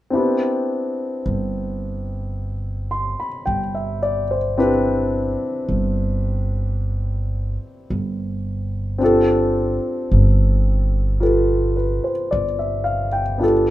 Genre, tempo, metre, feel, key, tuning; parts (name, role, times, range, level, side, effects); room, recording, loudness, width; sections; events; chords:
jazz ballad; 54 BPM; 4/4; swing 66% on 8ths; C major; A4 = 438 Hz
warm concert grand piano; accompaniment; 0.1-13.7 s; B3 to C6; -20 LUFS; left 1 dB
upright bass; bass; 1.3-13.7 s; G1; -21 LUFS; equal
moderate club reverb, RT60 0.6 s; minimal, uncompressed stereo recording; -18 LUFS; side -14 dB against mid
0.1-13.7 A section
0.1 Cmaj7/G; 9.0 Dm7/G